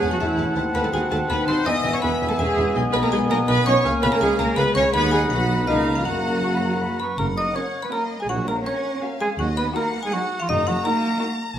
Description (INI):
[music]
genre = cinematic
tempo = 164 BPM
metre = 3/4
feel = straight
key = F# major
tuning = A4 = 436 Hz
[part]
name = warm studio violin section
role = melody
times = 0.0-11.6 s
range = C#5 to D#6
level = -33 LUFS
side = left 4 dB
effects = none
[part]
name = xylophone with wooden mallets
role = melody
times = 0.0-11.2 s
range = D#5 to D#6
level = -29 LUFS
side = left 3 dB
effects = none
[part]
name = concert flute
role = second line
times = 0.0-7.2 s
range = G#5 to C#6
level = -31 LUFS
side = left 2 dB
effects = none
[part]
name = mellow cor anglais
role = second line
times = 0.0-11.2 s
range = D#4 to F#5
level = -28 LUFS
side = right 1 dB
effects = none
[part]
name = rich chamber violin section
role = second line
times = 0.0-11.5 s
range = F#4 to B5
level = -33 LUFS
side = left 1 dB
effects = none
[part]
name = rich chamber viola section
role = accompaniment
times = 0.0-11.5 s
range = A#3 to D#5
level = -24 LUFS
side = right 2 dB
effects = none
[part]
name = warm bassoon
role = accompaniment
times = 0.0-7.0 s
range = A#3 to D#4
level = -31 LUFS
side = equal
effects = none
[part]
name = warm French horn section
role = sustained chords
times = 0.0-7.0 s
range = G#3 to F#4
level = -27 LUFS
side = left 3 dB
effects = none
[part]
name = warm chamber cello section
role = bass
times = 0.0-11.2 s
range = D#3 to D#4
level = -29 LUFS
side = right 1 dB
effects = none
[part]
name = warm chamber double bass section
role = bass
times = 0.0-10.8 s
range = F#1 to F#2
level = -28 LUFS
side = right 1 dB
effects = none
[part]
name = warm tuba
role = bass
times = 0.0-10.8 s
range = E1 to D#2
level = -30 LUFS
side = right 2 dB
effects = none
[sound]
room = wet recital hall reverb, RT60 1.5 s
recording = lossy compression artefacts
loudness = -19 LUFS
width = side -10 dB against mid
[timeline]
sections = 0.0-7.2 A section; 7.2-11.6 B section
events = none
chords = 0.0 F#m7/E; 0.6 D#dim7; 1.7 E; 2.8 G#m/B; 3.8 C#; 4.9 B/D#; 5.7 C#13; 6.1 F#; 8.3 F#/A#; 9.4 D#m; 10.5 D#m/F#